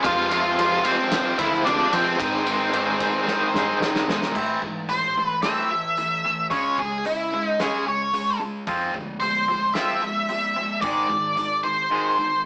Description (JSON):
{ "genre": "quiet-loud alternative rock", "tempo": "111 BPM", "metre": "4/4", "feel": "straight", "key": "A harmonic minor", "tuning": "A4 = 439 Hz", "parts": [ { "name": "octave-fuzz lead guitar", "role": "melody", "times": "0.0-12.4 s", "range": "C4 to F5", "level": "-24 LUFS", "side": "equal", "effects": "distortion" }, { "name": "crunchy overdriven guitar", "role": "riff", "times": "0.0-4.3 s", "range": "F2 to G#3", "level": "-29 LUFS", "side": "equal", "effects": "tremolo" }, { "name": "high-gain distorted guitar", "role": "riff", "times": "0.0-12.4 s", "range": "G#2 to F4", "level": "-31 LUFS", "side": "equal", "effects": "distortion" }, { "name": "hollow-body short-scale picked electric bass", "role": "bass", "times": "0.0-11.7 s", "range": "C#2 to F3", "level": "-41 LUFS", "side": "equal", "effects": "none" }, { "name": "loose indie drum kit", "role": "drums", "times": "0.0-11.5 s", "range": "crash cymbal, hi-hat, kick drum, ride cymbal, snare drum", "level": "-33 LUFS", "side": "equal", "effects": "none" }, { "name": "twangy electric guitar", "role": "arpeggios", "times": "4.4-12.4 s", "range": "G#2 to F4", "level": "-32 LUFS", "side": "equal", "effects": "none" } ], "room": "moderate studio reverb, RT60 0.6 s", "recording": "band playing live in one room, small speaker sound", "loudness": "-23 LUFS", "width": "mono", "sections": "0.0-4.3 A section; 4.3-12.5 B section", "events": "drum fill 3.3-4.3", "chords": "0.0 Fm; 2.2 G#; 4.3 Am; 6.5 C#m; 8.7 Fm; 10.8 G#", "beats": "| 0.04 0.58 1.12 1.66 | 2.19 2.73 3.27 3.81 | 4.35 4.89 5.43 5.97 | 6.51 7.05 7.59 8.13 | 8.67 9.21 9.76 10.30 | 10.84 11.38 11.92" }